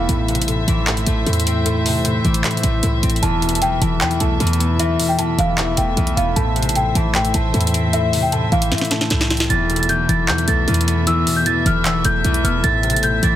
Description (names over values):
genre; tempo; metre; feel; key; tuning
hip hop, trap; 153 BPM; 4/4; half-time; A minor; A4 = 440 Hz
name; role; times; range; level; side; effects
celesta; melody; 0.0-0.1, 3.2-13.4 s; E5 to A6; -22 LUFS; right 1 dB; tape echo
concert harp; accompaniment; 0.0-13.4 s; E2 to C4; -20 LUFS; left 2 dB; none
warm chamber string section; sustained chords; 0.0-13.4 s; E3 to E5; -25 LUFS; left 1 dB; none
short 808-style bass; bass; 0.0-13.4 s; E1 to A2; -20 LUFS; right 1 dB; none
trap drum kit; drums; 0.1-13.3 s; handclaps, hi-hat, snare drum; -22 LUFS; equal; none
room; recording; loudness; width
light reverb, small room ambience; dense, heavily limited modern master; -15 LUFS; side -12 dB against mid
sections
0.0-9.5 A section; 9.5-13.4 B section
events
break 0.1-3.2; drum fill 8.7-9.5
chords
0.1 Am; 3.2 Esus4; 6.4 Am; 9.5 Esus4; 12.6 Am